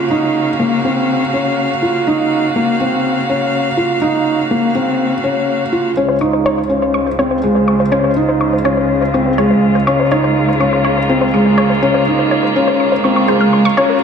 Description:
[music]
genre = piano and strings electronica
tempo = 123 BPM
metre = 4/4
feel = straight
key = Db major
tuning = A4 = 439 Hz
[part]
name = rich string quartet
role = sustained chords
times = 0.0-14.0 s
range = Db3 to F5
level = -18 LUFS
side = right 1 dB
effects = low-pass filter
[part]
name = felt-muted upright piano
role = riff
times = 0.0-14.0 s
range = Ab3 to F4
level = -14 LUFS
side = left 1 dB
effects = ping-pong delay
[part]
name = dark chamber cello section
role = bass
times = 6.0-14.0 s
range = Db2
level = -22 LUFS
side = right 1 dB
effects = none
[part]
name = wide unison pluck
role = arpeggios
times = 6.1-14.0 s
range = Bb4 to F6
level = -19 LUFS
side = equal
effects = cassette tape, ping-pong delay
[sound]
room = wet scoring stage reverb, RT60 1.7 s, small room reverb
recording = dark, warm production, high-pass filter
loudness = -12 LUFS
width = side -6 dB against mid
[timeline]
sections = 0.0-6.0 A section; 6.0-14.0 B section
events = build-up 6.0-14.0; filter sweep on string quartet 6.0-14.0; filter sweep on synth arpeggio sound 6.0-14.0; filter sweep 6.0-14.0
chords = 0.0 Ebm7/Db; 6.0 Dbmaj7

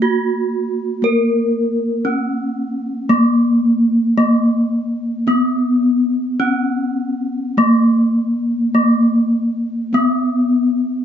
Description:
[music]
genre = gamelan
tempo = 51-61 BPM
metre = 4/4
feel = straight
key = unclear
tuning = A4 = 440 Hz
[part]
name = gamelan-type bronze metallophone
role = melody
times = 0.0-11.0 s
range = Bb3 to Bb4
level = -16 LUFS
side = equal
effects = none
[part]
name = gamelan-type bronze metallophone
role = accompaniment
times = 0.0-11.0 s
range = Bb3 to Cb4+20c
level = -19 LUFS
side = equal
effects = none
[sound]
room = moderate small room reverb, RT60 0.5 s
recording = band playing live in one room, nothing above 7.5 kHz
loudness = -14 LUFS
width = side -9 dB against mid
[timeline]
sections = 0.0-7.6 A section; 7.6-11.0 B section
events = none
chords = none

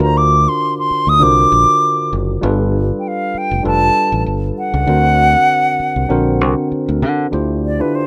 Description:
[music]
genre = lush 1970s-style soul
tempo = 98 BPM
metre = 4/4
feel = swing 54% on 16ths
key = unclear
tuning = A4 = 440 Hz
[part]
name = silver concert flute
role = melody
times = 0.0-8.1 s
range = B4 to Eb6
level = -16 LUFS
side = equal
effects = none
[part]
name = tine electric piano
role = accompaniment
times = 0.0-8.1 s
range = D3 to C5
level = -21 LUFS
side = equal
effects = none
[part]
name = fingered electric bass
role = bass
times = 0.0-7.8 s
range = F1 to D3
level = -19 LUFS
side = equal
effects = none
[sound]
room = light reverb, studio reverb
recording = rough home demo mix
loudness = -15 LUFS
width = mono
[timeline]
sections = 0.0-7.3 A section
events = none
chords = 0.0 D7alt; 2.4 G9; 4.9 Daug7; 7.3 Dm11

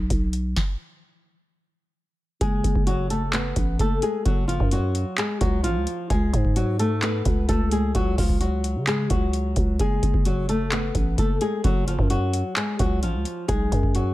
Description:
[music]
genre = hip hop, trap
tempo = 130 BPM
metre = 4/4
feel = half-time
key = F# harmonic minor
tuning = A4 = 441 Hz
[part]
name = growling 808-style bass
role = bass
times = 0.0-14.1 s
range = F#1 to C#3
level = -24 LUFS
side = equal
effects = none
[part]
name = booming analog drum machine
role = drums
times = 0.1-14.1 s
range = handclaps, hi-hat, kick drum, snare drum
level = -24 LUFS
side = equal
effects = none
[part]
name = flamenco guitar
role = melody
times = 2.4-14.1 s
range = E#3 to B4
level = -26 LUFS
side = left 1 dB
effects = analog delay
[sound]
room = little or no reverb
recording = echo-heavy mix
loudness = -21 LUFS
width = side -16 dB against mid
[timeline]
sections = 0.0-2.4 A section; 2.4-14.1 B section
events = break 0.0-2.4; stop 0.6-2.4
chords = 0.0 B5; 2.4 F#m; 6.1 C#sus4; 9.8 F#m; 13.5 B5

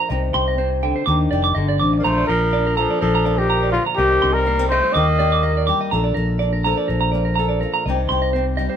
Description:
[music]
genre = highlife guitar band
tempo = 124 BPM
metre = 4/4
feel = swing 54% on 16ths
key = Bb major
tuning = A4 = 438 Hz
[part]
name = flamenco guitar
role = accompaniment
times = 0.0-8.8 s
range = Bb2 to A4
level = -24 LUFS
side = left 4 dB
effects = none
[part]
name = clean electric guitar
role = arpeggios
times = 0.0-8.8 s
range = Bb4 to D6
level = -22 LUFS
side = right 6 dB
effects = spring reverb
[part]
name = fingered electric bass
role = bass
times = 0.1-8.7 s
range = F1 to Eb2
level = -21 LUFS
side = equal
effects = none
[part]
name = breathy trumpet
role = melody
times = 2.0-5.7 s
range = F4 to Eb5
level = -19 LUFS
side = left 2 dB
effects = none
[part]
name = bright tenor saxophone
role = second line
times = 2.0-5.7 s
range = D3 to Bb3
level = -26 LUFS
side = right 5 dB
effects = none
[sound]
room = moderate studio reverb, RT60 0.6 s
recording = band playing live in one room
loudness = -16 LUFS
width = side -8 dB against mid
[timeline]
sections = 0.0-8.8 A section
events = none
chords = 0.1 Cm; 1.1 Ebmaj7; 2.0 Bb; 4.0 Cm; 5.0 Ebmaj7; 5.9 Bbmaj7; 7.9 Cm

